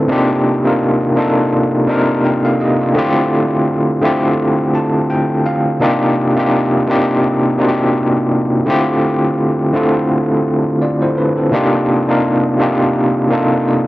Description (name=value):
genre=R&B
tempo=84 BPM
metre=4/4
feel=swing 55% on 16ths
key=C dorian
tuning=A4 = 440 Hz
part: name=overdriven tine electric piano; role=solo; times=0.0-13.9 s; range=C3 to A5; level=-12 LUFS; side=equal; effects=medium tremolo
room=light reverb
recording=none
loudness=-12 LUFS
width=side -17 dB against mid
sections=0.1-13.9 A section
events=tine electric piano fill 4.4-5.8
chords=0.1 Cm9; 3.0 Dm9; 5.8 Cm9; 8.7 Dm9; 11.5 Cm9